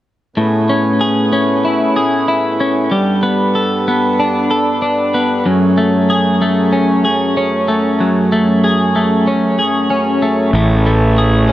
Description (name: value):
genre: rock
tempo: 94 BPM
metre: 4/4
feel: straight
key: A major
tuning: A4 = 439 Hz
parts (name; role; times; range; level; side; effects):
- hand-pumped harmonium; sustained chords; 0.4-11.5 s; F#2 to C#5; -19 LUFS; right 2 dB; none
- twelve-string electric guitar; arpeggios; 0.4-11.5 s; F#2 to A4; -13 LUFS; left 1 dB; digital delay
- fuzz fingered electric bass; bass; 10.5-11.5 s; A1; -12 LUFS; equal; overdrive
room: moderate scoring stage reverb, RT60 1.6 s, small room ambience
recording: dark, warm production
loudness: -12 LUFS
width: side -14 dB against mid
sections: 0.4-10.5 A section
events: none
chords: 0.4 Amaj7; 2.9 Gadd9; 5.5 F#madd9; 10.5 Amaj7